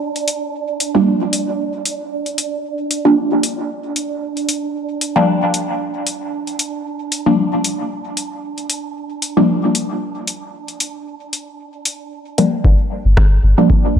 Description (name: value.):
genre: dub techno.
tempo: 114 BPM.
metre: 4/4.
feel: swing 55% on 16ths.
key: G minor.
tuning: A4 = 440 Hz.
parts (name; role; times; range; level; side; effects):
wind-like tuned noise texture; texture; 0.0-12.7 s; D4; -25 LUFS; right 6 dB; built-in reverb, sidechain pumping.
deep house drum kit; drums; 0.2-13.3 s; hi-hat, rim click; -20 LUFS; left 2 dB; overdrive.
filtered dub chord stab; stabs; 0.9-14.0 s; F3 to D4; -16 LUFS; equal; phaser, sidechain pumping, dub echo.
soft dub sub bass; bass; 12.6-14.0 s; G1 to D2; -12 LUFS; equal; sidechain pumping.
electronic kick drum; drums; 12.6-13.8 s; none; -13 LUFS; equal; none.
room: moderate echo chamber reverb, RT60 1.9 s, digital ambience.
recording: dry, gritty hardware recording.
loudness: -16 LUFS.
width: side -8 dB against mid.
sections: 0.0-12.6 A section; 12.6-14.0 B section.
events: none.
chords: 0.0 Gm7.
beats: | 0.01 0.54 1.07 1.59 | 2.12 2.65 3.17 3.70 | 4.22 4.75 5.28 5.80 | 6.33 6.86 7.38 7.91 | 8.44 8.96 9.49 10.01 | 10.54 11.07 11.59 12.12 | 12.65 13.17 13.70.